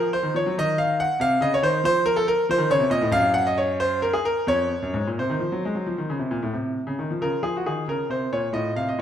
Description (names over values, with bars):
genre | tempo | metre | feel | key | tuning
classical, baroque-style suite movement for grand piano | 86-95 BPM (dotted quarters) | 12/8 | rubato | Bb minor | A4 = 440 Hz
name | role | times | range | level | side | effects
bright grand piano | solo | 0.0-9.0 s | F2 to Gb5 | -21 LUFS | equal | none
room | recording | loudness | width
moderate recital hall reverb, RT60 1.5 s | none | -21 LUFS | side -9 dB against mid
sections
0.0-7.2 A section; 7.2-9.0 A section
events
none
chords
0.0 Ebm9; 0.6 Cmadd11; 1.8 F; 3.1 N.C.; 4.5 F5; 7.2 Bbm/Db